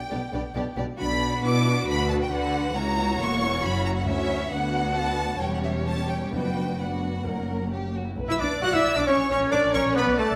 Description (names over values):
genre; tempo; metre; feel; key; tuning
quick classical-period movement for symphony orchestra; 135 BPM; 4/4; straight; B minor; A4 = 439 Hz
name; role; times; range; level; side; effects
warm studio violin section; melody; 0.0-10.4 s; E5 to F#6; -32 LUFS; equal; none
warm studio violin section; second line; 0.1-10.3 s; E4 to F#5; -34 LUFS; equal; none
dark studio viola section; accompaniment; 0.1-10.4 s; G3 to D5; -33 LUFS; equal; none
clear studio double bass section; bass; 0.1-10.3 s; E1 to B2; -34 LUFS; equal; none
dark studio cello section; bass; 0.1-10.4 s; C#2 to F#4; -32 LUFS; equal; none
timpani; percussion; 6.3-7.9 s; F#2; -35 LUFS; equal; none
mellow cor anglais; second line; 8.3-10.3 s; A3 to F#4; -33 LUFS; equal; none
warm clarinet; second line; 8.3-10.4 s; A4 to F#5; -33 LUFS; equal; none
warm French horn section; sustained chords; 8.3-10.4 s; A3 to F#4; -31 LUFS; equal; none
clear trumpet; stabs; 8.3-10.4 s; A4 to F#5; -29 LUFS; equal; none
room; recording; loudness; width
wet recital hall reverb, RT60 1.6 s; none; -25 LUFS; mono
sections
0.0-8.2 A section; 8.2-10.4 B section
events
none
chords
0.0 G/B; 1.0 Bm; 1.9 Bm/D; 2.8 F#7; 4.5 Bm/D; 5.4 C#dim/E; 6.3 Bm/F#; 7.3 F#; 8.2 Bm; 9.1 A#m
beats
0.11 0.55 | 0.99 1.43 1.87 2.31 | 2.75 3.20 3.64 4.08 | 4.53 4.97 5.42 5.87 | 6.33 6.79 7.26 7.72 | 8.18 8.62 9.07 9.52 | 9.97